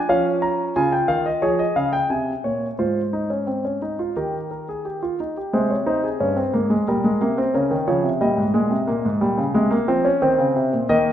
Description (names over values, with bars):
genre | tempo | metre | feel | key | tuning
classical, baroque-style 3-part fugue for grand piano | 89 BPM | 4/4 | straight | Ab major | A4 = 440 Hz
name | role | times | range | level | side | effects
warm grand piano | solo | 0.0-11.1 s | G2 to Bb5 | -18 LUFS | equal | none
room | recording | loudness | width
wet recital hall reverb, RT60 1.4 s | none | -19 LUFS | side -10 dB against mid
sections
0.0-5.5 A section; 5.5-11.1 B section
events
none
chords
0.1 Db/F; 1.4 Bbm7; 2.8 Ebsus4/Ab; 4.2 Eb; 5.5 Ab/C; 6.9 Gdim/Bb (rootless); 8.2 Eb7; 9.6 Ab/C (rootless)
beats
| 0.09 0.75 1.42 2.10 | 2.78 3.46 4.15 4.84 | 5.52 6.20 6.87 7.54 | 8.21 8.88 9.55 10.22 | 10.89